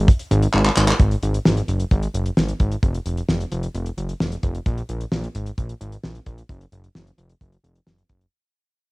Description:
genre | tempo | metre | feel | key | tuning
synth-pop | 131 BPM | 4/4 | straight | unclear | A4 = 439 Hz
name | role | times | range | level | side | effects
fat analog bass | bass | 0.0-8.3 s | F1 to Bb1 | -22 LUFS | equal | none
damped 70s drum kit | drums | 0.1-8.3 s | handclaps, hi-hat, kick drum, snare drum | -18 LUFS | equal | cassette tape
room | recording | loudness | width
light reverb | home recording on cassette | -19 LUFS | side -24 dB against mid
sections
1.0-8.3 A section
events
drum fill 0.5-1.0; fade-out 1.0-8.3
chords
none

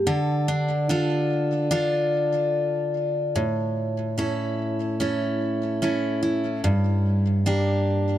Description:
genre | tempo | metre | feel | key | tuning
pop | 73 BPM | 4/4 | straight | unclear | A4 = 441 Hz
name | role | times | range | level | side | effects
picked steel-string acoustic guitar | solo | 0.0-8.2 s | G2 to A4 | -22 LUFS | equal | digital delay
room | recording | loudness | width
light reverb | dark, warm production | -22 LUFS | side -12 dB against mid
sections
0.0-3.3 A section; 3.3-8.2 B section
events
none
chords
0.1 Dm; 3.3 A; 6.6 Gm

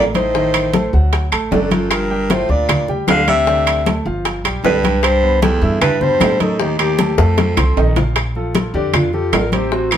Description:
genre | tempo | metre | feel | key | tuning
Afro-Cuban jazz | 154 BPM | 4/4 | straight | unclear | A4 = 440 Hz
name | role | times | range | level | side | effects
dark alto saxophone | melody | 0.0-10.0 s | A3 to F5 | -18 LUFS | left 2 dB | none
clear baritone saxophone | second line | 0.0-7.9 s | Eb2 to D3 | -22 LUFS | right 3 dB | none
warm concert grand piano | accompaniment | 0.0-10.0 s | B2 to E6 | -23 LUFS | right 1 dB | none
upright bass | bass | 0.0-10.0 s | G1 to A2 | -20 LUFS | equal | none
congas | percussion | 0.1-10.0 s | none | -21 LUFS | left 2 dB | none
bongos | percussion | 0.2-9.9 s | none | -22 LUFS | left 6 dB | none
timbales | percussion | 0.2-10.0 s | none | -21 LUFS | right 8 dB | none
claves | percussion | 0.5-10.0 s | none | -26 LUFS | left 5 dB | none
room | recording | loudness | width
moderate studio reverb, RT60 0.6 s | band playing live in one room | -13 LUFS | side -10 dB against mid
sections
0.0-8.2 A section; 8.2-10.0 B section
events
drum fill 7.2-8.2; alto saxophone solo 8.2-10.0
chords
0.3 Adim; 1.1 D; 1.9 Gm7; 3.5 Dm7; 4.3 G7; 5.0 Cmaj7; 6.6 F9/Eb; 7.4 F7; 8.2 Bbmaj9

